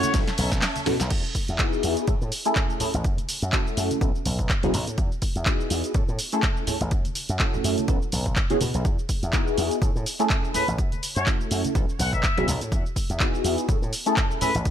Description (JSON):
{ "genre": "filtered disco house", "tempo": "124 BPM", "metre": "4/4", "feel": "swing 56% on 16ths", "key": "E major", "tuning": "A4 = 441 Hz", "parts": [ { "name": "warm trumpet section", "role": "melody", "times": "0.0-0.2, 10.5-14.6 s", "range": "B4 to F#5", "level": "-28 LUFS", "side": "left 3 dB", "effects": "sidechain pumping, low-pass filter, ping-pong delay" }, { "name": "funky polysynth comp", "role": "accompaniment", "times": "0.0-14.5 s", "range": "A3 to A4", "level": "-27 LUFS", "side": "equal", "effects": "chorus, phaser, sidechain pumping, low-pass filter" }, { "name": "dark symphonic string section", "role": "sustained chords", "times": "0.0-1.1 s", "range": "A3 to F#5", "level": "-33 LUFS", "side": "right 1 dB", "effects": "sidechain pumping, low-pass filter" }, { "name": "punchy analog drum machine", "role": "drums", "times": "0.0-14.7 s", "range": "crash cymbal, handclaps, hi-hat, ride cymbal, shaker, snare drum", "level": "-28 LUFS", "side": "equal", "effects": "sidechain pumping on hats, small room ambience, sidechain pumping on perc, sidechain pumping on cymbals" }, { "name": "congas and maracas", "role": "percussion", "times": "0.0-14.7 s", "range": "none", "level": "-35 LUFS", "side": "left 2 dB", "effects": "sidechain pumping on perc, low-pass filter on perc" }, { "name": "slap bass with an envelope filter", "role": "bass", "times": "0.1-14.7 s", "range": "A1 to B2", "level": "-28 LUFS", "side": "equal", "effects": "sidechain pumping, low-pass filter" }, { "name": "electronic kick drum", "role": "drums", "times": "0.1-14.7 s", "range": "none", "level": "-25 LUFS", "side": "equal", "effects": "small room ambience" } ], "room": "little or no reverb", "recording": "none", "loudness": "-22 LUFS", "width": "side -10 dB against mid", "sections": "0.0-1.1 A section; 1.1-14.7 B section", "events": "drop 0.0-1.1; drum fill 0.1-1.1; kick drops out 0.6-1.1; filter sweep 1.1-14.7", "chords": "0.1 B9sus4; 1.1 Emaj9; 2.1 Amaj7; 3.0 F#m7; 4.0 B9sus4; 5.0 Emaj9; 6.0 Amaj7; 6.9 F#m7; 7.9 Bsus4; 8.9 Emaj9; 9.8 Amaj7; 10.8 F#m7; 11.8 B9sus4; 12.7 Emaj9; 13.7 Amaj7" }